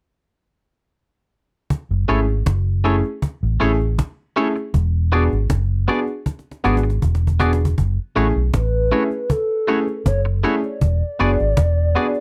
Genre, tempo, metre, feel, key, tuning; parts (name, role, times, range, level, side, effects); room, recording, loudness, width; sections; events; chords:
lovers rock reggae; 79 BPM; 4/4; straight; F# minor; A4 = 439 Hz
cajon; drums; 1.7-12.2 s; -23 LUFS; equal
vintage muted fingered electric bass; bass; 1.9-11.9 s; E1 to B1; -20 LUFS; equal
clear grand piano; accompaniment; 2.1-12.1 s; A3 to G#4; -24 LUFS; equal
twangy electric guitar; stabs; 2.1-12.1 s; A3 to D5; -24 LUFS; equal
hollow clarinet-like synth lead; melody; 8.6-12.2 s; A4 to D5; -26 LUFS; equal; chorus, tape echo
little or no reverb; dry, close 1970s-style studio recording; -20 LUFS; mono
1.7-7.8 A section; 7.8-12.2 B section
drum fill 6.3-7.8
1.7 F#m7; 4.7 E9; 7.8 F#m7; 10.8 E9